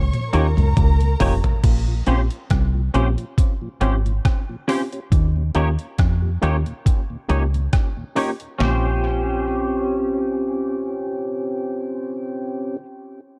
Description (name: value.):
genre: lovers rock reggae.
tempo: 69 BPM.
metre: 4/4.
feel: swing 55% on 16ths.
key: Bb dorian.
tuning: A4 = 435 Hz.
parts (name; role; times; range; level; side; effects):
warm symphonic string section; second line; 0.0-1.6 s; Bb4 to Db6; -32 LUFS; equal; tape echo.
deep dub fingered electric bass; bass; 0.0-12.8 s; F1 to F2; -22 LUFS; equal; none.
mellow tonewheel organ; accompaniment; 0.1-12.8 s; Eb2 to G4; -31 LUFS; equal; slow rotary speaker, tape echo.
detuned 8-bit digital drum machine; drums; 0.1-8.8 s; crash cymbal, hi-hat, kick drum, rim click, snare drum, toms; -22 LUFS; equal; overdrive.
overdriven tine electric piano; accompaniment; 0.3-12.8 s; Bb3 to G4; -30 LUFS; equal; fast tremolo, tape echo.
twangy electric guitar; stabs; 0.3-12.8 s; Db4 to Db5; -29 LUFS; equal; ensemble chorus.
room: little or no reverb.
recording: dark, warm production.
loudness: -21 LUFS.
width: mono.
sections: 0.0-1.6 A section; 1.6-8.6 B section; 8.6-12.1 C section.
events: drum fill 0.0-1.6.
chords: 0.0 Eb7; 1.6 Bbm69; 5.1 Eb7; 8.6 Bbm69.